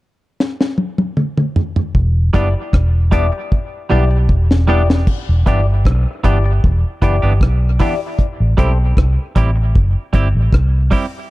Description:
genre	dub reggae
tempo	77 BPM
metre	4/4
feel	straight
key	E minor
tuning	A4 = 440 Hz
part	deep reggae drum kit	drums	0.4-11.1 s	crash cymbal, hi-hat, kick drum, rim click, snare drum, toms	-16 LUFS	equal	none
part	vintage muted fingered electric bass	bass	2.0-10.9 s	E1 to C2	-14 LUFS	equal	none
part	semi-hollow electric guitar	accompaniment	2.3-11.1 s	E3 to G4	-23 LUFS	right 5 dB	dub echo
part	percussive organ stab	stabs	2.3-8.8 s	E4 to D5	-23 LUFS	left 6 dB	chorus, phaser, dub echo
room	light reverb, small room ambience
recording	dark, warm production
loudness	-13 LUFS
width	side -18 dB against mid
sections	0.0-1.9 A section; 1.9-5.1 B section; 5.1-11.3 C section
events	drum fill 0.4-1.9, 3.5-5.1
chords	0.0 N.C.; 1.9 Em7; 8.2 Am7

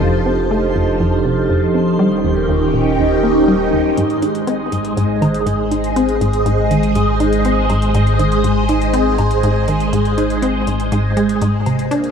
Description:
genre	ambient, sequencer-driven space music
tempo	121 BPM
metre	4/4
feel	straight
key	Ab major from 4.0 s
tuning	A4 = 440 Hz
part	phased string machine	sustained chords	0.0-12.1 s	Eb3 to A5	-17 LUFS	equal	ensemble chorus, phaser
part	vibraphone with medium hard mallets	arpeggios	0.0-4.0 s	Db4 to Eb5	-19 LUFS	right 4 dB	auto-pan, tape echo
part	resonant blip pluck	riff	0.0-12.1 s	Eb2 to Eb4	-18 LUFS	equal	chorus, tape echo
part	round analog bass	bass	0.0-12.1 s	Eb1 to Bb1	-22 LUFS	equal	none
part	twinkling granular texture	texture	0.0-4.0 s	C5	-31 LUFS	left 3 dB	built-in reverb
part	electronic hi-hat and woodblock	percussion	4.0-12.1 s	none	-34 LUFS	left 3 dB	tape echo
room	moderate plate reverb, RT60 3.6 s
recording	dark, warm production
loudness	-13 LUFS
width	side -7 dB against mid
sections	0.0-4.0 A section; 4.0-12.1 B section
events	none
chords	0.0 F; 2.0 Eb7; 4.0 Ab

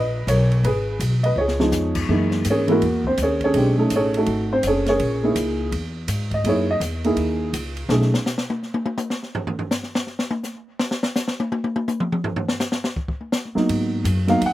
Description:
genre	jazz piano trio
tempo	166 BPM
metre	4/4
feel	swing 64% on 8ths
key	F# mixolydian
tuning	A4 = 439 Hz
part	dark upright piano	melody	0.0-8.1, 13.6-14.5 s	E3 to F#5	-20 LUFS	right 1 dB	none
part	upright bass	bass	0.0-8.1, 13.6-14.5 s	F#1 to G#2	-23 LUFS	equal	none
part	open jazz drum kit	drums	0.3-14.5 s	crash cymbal, hi-hat, kick drum, ride cymbal, snare drum, toms	-26 LUFS	left 1 dB	none
room	little or no reverb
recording	recorded outdoors, with no room sound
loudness	-19 LUFS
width	side -14 dB against mid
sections	0.0-2.1 A section; 2.1-14.5 B section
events	drum fill 1.4-1.7; upright piano solo 2.1-14.5; drum solo 7.9-13.7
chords	0.0 D#5; 0.6 G#m; 1.4 C#9; 2.1 F#13; 3.5 B13; 5.0 F#13; 7.9 N.C.; 13.7 G#m7

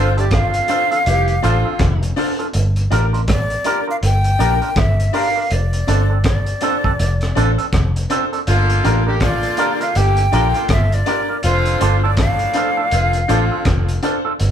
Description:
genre	roots reggae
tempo	81 BPM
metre	4/4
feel	swing 61% on 16ths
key	unclear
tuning	A4 = 440 Hz
part	breathy jazz flute	melody	0.0-13.6 s	C5 to G5	-20 LUFS	equal	none
part	clear horn section	second line	0.0-2.1, 8.5-14.0 s	A2 to G4	-22 LUFS	equal	tube saturation
part	electric guitar with an envelope filter	accompaniment	0.0-14.3 s	C4 to Bb4	-22 LUFS	right 3 dB	none
part	bright upright piano	stabs	0.0-14.2 s	D4 to C5	-24 LUFS	left 3 dB	none
part	vintage muted fingered electric bass	bass	0.0-14.5 s	F1 to Bb1	-17 LUFS	equal	none
part	crunchy breakbeat drum kit	drums	0.2-14.5 s	hi-hat, kick drum, rim click	-22 LUFS	equal	none
room	moderate studio reverb, RT60 0.8 s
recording	band playing live in one room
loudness	-14 LUFS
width	side -9 dB against mid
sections	0.0-14.5 A section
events	none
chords	0.0 F6; 2.5 Gm7; 5.5 F6; 8.5 Gm7; 11.4 F6

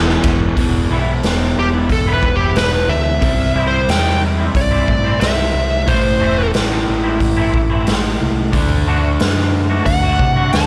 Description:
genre	quiet-loud alternative rock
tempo	90 BPM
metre	4/4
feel	straight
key	E minor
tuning	A4 = 440 Hz
part	twangy electric guitar	arpeggios	0.0-10.6 s	D3 to F#4	-26 LUFS	equal	ensemble chorus, slapback echo
part	crunchy overdriven guitar	riff	0.0-10.7 s	E2 to D4	-22 LUFS	equal	slapback echo
part	overdriven picked electric bass	bass	0.0-10.7 s	E1 to C3	-22 LUFS	equal	none
part	raw garage drum kit	drums	0.1-10.7 s	hi-hat, kick drum, ride cymbal, snare drum	-20 LUFS	equal	none
part	smooth overdriven lead guitar	melody	1.6-10.7 s	G4 to A5	-21 LUFS	equal	slapback echo
room	small room ambience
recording	live gig heard through the venue's PA, club reverb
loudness	-16 LUFS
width	mono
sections	0.6-10.7 A section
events	lead electric guitar solo 0.6-10.7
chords	0.0 Em; 3.2 C; 5.9 Am; 8.5 D

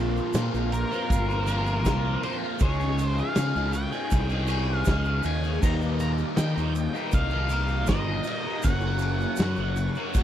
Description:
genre	psychedelic rock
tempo	80 BPM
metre	4/4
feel	straight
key	Eb mixolydian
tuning	A4 = 440 Hz
part	bright tonewheel organ	sustained chords	0.0-10.2 s	Ab4 to Eb6	-42 LUFS	right 3 dB	chorus vibrato, fast rotary speaker
part	overdriven electric guitar	riff	0.0-10.2 s	Eb2 to Ab4	-30 LUFS	left 2 dB	phaser
part	fuzz fingered electric bass	bass	0.0-10.2 s	Eb1 to Eb3	-27 LUFS	equal	overdrive
part	egg shaker	percussion	0.2-10.2 s	none	-44 LUFS	right 24 dB	none
part	vintage drum kit	drums	0.3-10.2 s	crash cymbal, kick drum, ride cymbal, snare drum	-29 LUFS	equal	none
part	octave-fuzz lead guitar	melody	0.7-10.2 s	Bb4 to Bb5	-32 LUFS	equal	distortion, slapback echo
room	little or no reverb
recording	none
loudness	-23 LUFS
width	side -11 dB against mid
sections	0.0-10.2 A section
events	none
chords	0.0 Bbsus2; 2.6 Dbadd9; 5.6 Eb; 8.6 Gb

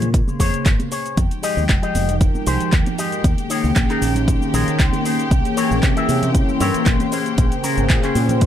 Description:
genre	nu-disco, nu disco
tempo	116 BPM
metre	4/4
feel	swing 54% on 16ths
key	F minor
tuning	A4 = 435 Hz
part	warm analog pad	accompaniment	0.0-8.5 s	Db3 to C6	-22 LUFS	left 1 dB	chorus, sidechain pumping
part	electric guitar with an envelope filter	riff	0.0-8.4 s	Db4 to E5	-25 LUFS	left 4 dB	wide subtle chorus, ping-pong delay
part	fingered electric bass with an envelope filter	bass	0.0-8.5 s	F1 to C3	-22 LUFS	equal	none
part	pop drum kit	drums	0.0-8.5 s	handclaps, hi-hat, shaker	-26 LUFS	equal	overdrive
part	congas	percussion	0.0-8.4 s	none	-30 LUFS	equal	none
part	electronic kick drum	drums	0.1-8.5 s	none	-17 LUFS	equal	overdrive
part	clear symphonic string section	sustained chords	1.2-8.5 s	G4 to G5	-29 LUFS	right 1 dB	sidechain pumping
room	light reverb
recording	none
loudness	-16 LUFS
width	side -10 dB against mid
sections	0.0-8.5 A section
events	filter sweep on analog synth pad 0.0-8.5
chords	0.0 Bbm9; 1.2 Fm9; 3.2 Eb7sus4; 5.3 C7b9b13; 7.1 Bbm9

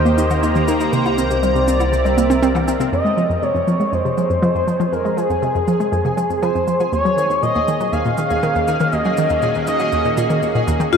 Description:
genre	ambient, sequencer-driven space music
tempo	120 BPM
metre	4/4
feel	straight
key	F phrygian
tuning	A4 = 440 Hz
part	expressive portamento lead	melody	0.0-10.6 s	Ab4 to F5	-19 LUFS	left 1 dB	lush chorus, ping-pong delay
part	sweeping resonant pad	sustained chords	0.0-11.0 s	C3 to Bb5	-24 LUFS	right 1 dB	chorus
part	hollow square pluck	riff	0.0-11.0 s	Eb2 to E4	-19 LUFS	equal	chorus, ping-pong delay
part	warm sub bass	bass	0.0-2.9 s	C2 to Eb2	-22 LUFS	equal	none
part	cabasa and woodblock	percussion	0.1-11.0 s	none	-36 LUFS	left 2 dB	overdrive, ping-pong delay
part	pulsing gated texture	texture	2.9-11.0 s	Ab4 to Ab5	-27 LUFS	right 4 dB	chorus, built-in reverb
part	vibraphone with medium hard mallets	arpeggios	10.9-11.0 s	F4	-10 LUFS	left 9 dB	auto-pan
room	wet huge ambient reverb, RT60 8.0 s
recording	in a vast, echoing space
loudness	-15 LUFS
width	side -6 dB against mid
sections	0.0-2.9 A section; 2.9-11.0 B section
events	fade-in on analog synth pad 2.9-11.0; fade-in on drum 2.9-11.0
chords	0.0 Eb; 0.9 C7; 2.9 Fm; 6.9 Ebm7

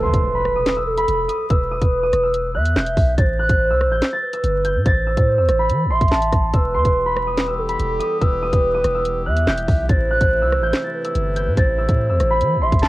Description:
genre	hip hop, drill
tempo	143 BPM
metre	4/4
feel	half-time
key	E harmonic minor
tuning	A4 = 440 Hz
part	concert harp	melody	0.0-12.9 s	A4 to A6	-23 LUFS	equal	low-pass filter, tape echo
part	gliding portamento lead	second line	0.0-12.9 s	A4 to E5	-21 LUFS	right 1 dB	chorus, cassette tape, tape echo
part	long sustained 808-style bass	bass	0.0-12.9 s	E1 to E3	-22 LUFS	equal	none
part	impact	sound effects	0.0-1.5 s	none	-30 LUFS	equal	none
part	drill drum kit	drums	0.1-12.9 s	handclaps, hi-hat, kick drum, rim click, snare drum	-18 LUFS	equal	cassette tape
part	mellow brass ensemble	sustained chords	6.5-12.9 s	C3 to G4	-32 LUFS	left 1 dB	cassette tape
room	light reverb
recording	home recording on cassette, vinyl crackle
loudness	-16 LUFS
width	side -17 dB against mid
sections	0.0-12.9 A section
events	impact 0.0-1.5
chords	0.0 E5; 3.2 Am; 6.5 Em; 9.9 Am

